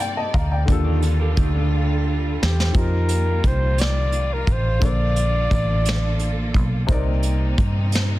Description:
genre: slow six-eight R&B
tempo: 58 BPM (dotted quarters)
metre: 6/8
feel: straight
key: Bb major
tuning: A4 = 440 Hz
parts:
  - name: warm baby grand piano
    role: accompaniment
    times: 0.0-8.2 s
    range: C3 to Bb5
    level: -29 LUFS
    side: left 4 dB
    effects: none
  - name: rich studio string section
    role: sustained chords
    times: 0.0-8.2 s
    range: C3 to D5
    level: -31 LUFS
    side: right 1 dB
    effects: none
  - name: vintage muted fingered electric bass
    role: bass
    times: 0.0-8.2 s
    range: A1 to G2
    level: -20 LUFS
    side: equal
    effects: none
  - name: vintage brush drum kit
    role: drums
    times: 0.0-8.1 s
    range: hi-hat, kick drum, snare drum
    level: -22 LUFS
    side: equal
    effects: none
  - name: electric guitar at the edge of break-up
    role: second line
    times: 0.7-2.5 s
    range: D4 to Bb4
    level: -29 LUFS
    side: right 4 dB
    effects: none
  - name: breathy flugelhorn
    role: melody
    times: 2.4-6.6 s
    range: G4 to D5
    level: -26 LUFS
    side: equal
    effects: none
room: studio reverb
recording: dense, heavily limited modern master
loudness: -18 LUFS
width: side -16 dB against mid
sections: 0.0-8.2 A section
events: drum fill 1.7-2.7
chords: 0.0 Cm9; 0.7 Ebmaj9#11; 2.7 F9sus4; 4.8 Bbmaj7; 6.9 Cm9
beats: | 0.68 1.71 | 2.75 3.78 | 4.82 5.85 | 6.89 7.92

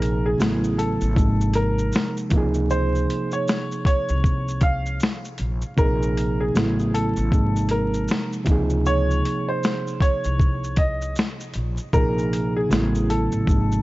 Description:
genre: lo-fi hip hop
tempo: 78 BPM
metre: 4/4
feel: swing 61% on 16ths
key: Db major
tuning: A4 = 440 Hz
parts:
  - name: bright upright piano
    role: melody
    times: 0.0-13.8 s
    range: Ab4 to F5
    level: -27 LUFS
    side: equal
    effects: none
  - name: overdriven reed electric piano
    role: accompaniment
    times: 0.0-13.8 s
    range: C3 to Ab4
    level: -25 LUFS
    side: right 1 dB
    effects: cassette tape
  - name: upright bass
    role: bass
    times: 0.0-13.8 s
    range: Ab1 to Db2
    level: -24 LUFS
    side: equal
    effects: none
  - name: boom bap sampler-style drum kit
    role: drums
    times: 0.0-13.8 s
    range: hi-hat, kick drum, shaker, snare drum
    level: -22 LUFS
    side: equal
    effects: none
room: digital ambience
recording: vinyl crackle, nothing above 7.7 kHz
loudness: -19 LUFS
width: side -18 dB against mid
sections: 0.0-13.8 A section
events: none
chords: 0.4 Aadd9; 1.2 Ab; 2.3 Dbmaj7; 5.8 Bb5; 6.5 Aadd9; 7.3 Ab; 8.5 Dbmaj7; 11.9 Bb5; 12.7 Aadd9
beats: 0.39 1.16 1.93 | 2.70 3.47 4.24 5.01 | 5.78 6.55 7.32 8.09 | 8.85 9.62 10.39 11.16 | 11.93 12.70 13.47

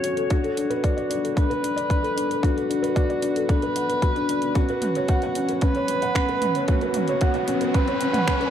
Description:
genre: piano and strings electronica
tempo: 113 BPM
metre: 4/4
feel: straight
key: unclear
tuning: A4 = 438 Hz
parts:
  - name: dark viola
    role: melody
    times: 0.0-8.5 s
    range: F#4 to C#5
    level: -26 LUFS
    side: right 1 dB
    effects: low-pass filter
  - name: felt-muted upright piano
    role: riff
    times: 0.0-8.5 s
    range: C#4 to F#5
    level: -24 LUFS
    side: left 1 dB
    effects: none
  - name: deep house drum kit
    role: drums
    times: 0.0-8.5 s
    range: finger snaps, hi-hat, toms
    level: -31 LUFS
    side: right 1 dB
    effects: overdrive
  - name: electronic kick drum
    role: drums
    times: 0.3-8.4 s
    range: none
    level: -23 LUFS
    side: equal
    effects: overdrive
  - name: riser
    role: sound effects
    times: 5.6-8.5 s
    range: none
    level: -31 LUFS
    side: right 1 dB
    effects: none
room: moderate huge ambient reverb, RT60 4.6 s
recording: dark, warm production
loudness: -20 LUFS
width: side -9 dB against mid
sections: 0.0-8.5 A section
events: build-up 0.0-8.5; riser 5.6-8.5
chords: 0.3 D6; 4.6 Bsus2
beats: | 0.31 0.84 1.37 1.90 | 2.44 2.97 3.50 4.03 | 4.56 5.09 5.62 6.15 | 6.68 7.21 7.75 8.28

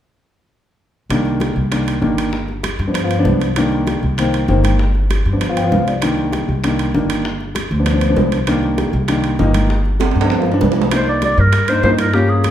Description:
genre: Afro-Cuban jazz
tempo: 196 BPM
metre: 4/4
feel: straight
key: C minor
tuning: A4 = 440 Hz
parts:
  - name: dark grand piano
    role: accompaniment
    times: 1.1-12.5 s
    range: Eb3 to G5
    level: -18 LUFS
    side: left 1 dB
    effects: none
  - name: upright bass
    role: bass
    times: 1.1-12.5 s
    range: G1 to G2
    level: -18 LUFS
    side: equal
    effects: none
  - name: bongos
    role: percussion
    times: 1.1-12.5 s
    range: none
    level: -27 LUFS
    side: left 2 dB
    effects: none
  - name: congas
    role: percussion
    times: 1.1-12.5 s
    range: none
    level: -28 LUFS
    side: right 1 dB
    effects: none
  - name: timbales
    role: percussion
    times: 1.1-12.5 s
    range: none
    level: -24 LUFS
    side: right 5 dB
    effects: none
  - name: clear clarinet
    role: melody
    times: 10.9-12.5 s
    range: G4 to D5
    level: -16 LUFS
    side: equal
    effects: none
room: wet large studio reverb, RT60 1.3 s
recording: band playing live in one room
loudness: -14 LUFS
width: side -11 dB against mid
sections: 1.1-10.9 A section; 10.9-12.5 B section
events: grand piano fill 5.4-6.0; drum fill 10.0-10.9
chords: 1.1 Cm7; 2.3 G7; 3.6 Cm7; 4.8 G7; 6.0 Cm7; 7.2 G7; 8.5 Cm7; 9.7 G7; 10.9 Cm7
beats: | 1.10 1.41 1.72 2.02 | 2.33 2.64 2.95 3.26 | 3.56 3.87 4.18 4.49 | 4.79 5.10 5.41 5.71 | 6.02 6.33 6.64 6.94 | 7.25 7.56 7.86 8.17 | 8.47 8.78 9.09 9.39 | 9.70 10.00 10.31 10.62 | 10.92 11.22 11.53 11.84 | 12.14 12.44

